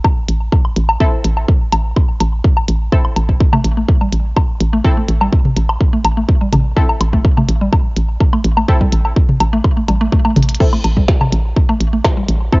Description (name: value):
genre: minimal techno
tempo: 125 BPM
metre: 4/4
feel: straight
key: A minor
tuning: A4 = 440 Hz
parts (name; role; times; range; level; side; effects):
- electronic kick drum; drums; 0.0-12.6 s; none; -13 LUFS; equal; cassette tape
- electronic woodblock and toms; percussion; 0.0-12.6 s; none; -18 LUFS; left 1 dB; cassette tape, tape echo
- hollow knocking FM bass; bass; 0.3-12.5 s; A1; -15 LUFS; equal; sidechain pumping
- minimal click drum kit; drums; 0.3-12.4 s; crash cymbal, hi-hat, snare drum; -22 LUFS; equal; overdrive, cassette tape
- filtered dub chord stab; stabs; 1.0-12.6 s; C4 to A4; -23 LUFS; left 1 dB; chorus, cassette tape, tape echo
- mallet-like synth pluck; riff; 3.5-12.2 s; G3 to A3; -20 LUFS; equal; chorus, sidechain pumping, cassette tape, tape echo
room: little or no reverb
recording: home recording on cassette, nothing above 7.5 kHz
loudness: -12 LUFS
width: side -25 dB against mid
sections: 0.0-12.6 A section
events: drum fill 10.4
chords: none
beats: 0.04 0.53 | 1.00 1.49 1.97 2.44 | 2.92 3.40 3.88 4.37 | 4.84 5.33 5.80 6.29 | 6.76 7.25 7.72 8.21 | 8.69 9.16 9.64 10.12 | 10.61 11.09 11.56 12.04 | 12.53